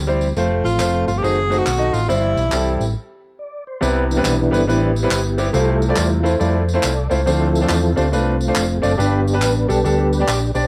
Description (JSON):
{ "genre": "uptempo gospel", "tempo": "139 BPM", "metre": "4/4", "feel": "swing 64% on 8ths", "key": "C major", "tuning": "A4 = 438 Hz", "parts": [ { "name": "mellow tonewheel organ", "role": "sustained chords", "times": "0.0-10.7 s", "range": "D#3 to D5", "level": "-24 LUFS", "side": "equal", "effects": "chorus vibrato, slow rotary speaker, cassette tape" }, { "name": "hollow-body short-scale fingered electric bass", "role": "bass", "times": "0.0-10.7 s", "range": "F1 to F2", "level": "-22 LUFS", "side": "equal", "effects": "none" }, { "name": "bright concert grand piano", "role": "accompaniment", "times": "0.1-10.6 s", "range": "G2 to D#5", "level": "-23 LUFS", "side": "equal", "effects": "cassette tape" }, { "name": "tambourine and handclaps", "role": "percussion", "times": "0.2-10.6 s", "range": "none", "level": "-30 LUFS", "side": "equal", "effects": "none" }, { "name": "breathy tenor saxophone", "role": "melody", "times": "0.6-2.9 s", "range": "E4 to Ab4", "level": "-23 LUFS", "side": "equal", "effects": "cassette tape" } ], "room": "moderate spring reverb, RT60 1.6 s, small room ambience", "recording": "home recording on cassette", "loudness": "-18 LUFS", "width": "mono", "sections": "0.0-3.8 A section; 3.8-10.7 B section", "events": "stop 3.0-3.8; tonewheel organ solo 3.8-10.7", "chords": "0.4 F; 1.2 F#dim7; 2.1 C/G; 3.0 N.C.; 3.8 Cmaj7; 5.5 Fmaj7/C; 7.3 Dm7; 9.0 G", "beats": "| 0.36 0.80 1.23 1.66 | 2.09 2.52 2.95 3.38 | 3.82 4.25 4.68 5.11 | 5.54 5.97 6.40 6.83 | 7.26 7.69 8.12 8.56 | 8.99 9.42 9.85 10.28" }